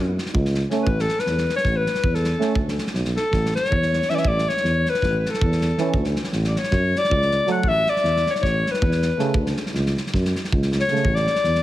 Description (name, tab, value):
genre	balkan folk, Balkan brass band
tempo	318 BPM (eighths)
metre	9/8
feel	straight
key	A major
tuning	A4 = 438 Hz
part	clear alto saxophone	second line	0.0-11.6 s	F#4 to F#5	-22 LUFS	left 2 dB	none
part	mellow tuba	bass	0.0-11.6 s	A1 to F#2	-23 LUFS	equal	none
part	loose indie drum kit	percussion	0.2-11.6 s	kick drum, snare drum	-26 LUFS	equal	none
part	breathy trombone	accompaniment	0.7-11.1 s	C#3 to A3	-27 LUFS	right 6 dB	none
part	warm trombone	accompaniment	0.7-11.1 s	A3 to C#4	-30 LUFS	left 1 dB	none
room	moderate recital hall reverb, RT60 1.5 s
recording	heavily compressed radio sound, multiband compression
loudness	-19 LUFS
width	side -14 dB against mid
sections	0.0-11.6 A section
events	alto saxophone solo 0.0-11.6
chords	0.0 F#m; 0.9 A5; 2.6 D5; 3.3 A; 5.9 D5; 6.7 F#m; 7.6 A; 9.4 D5; 10.1 F#m; 11.1 A5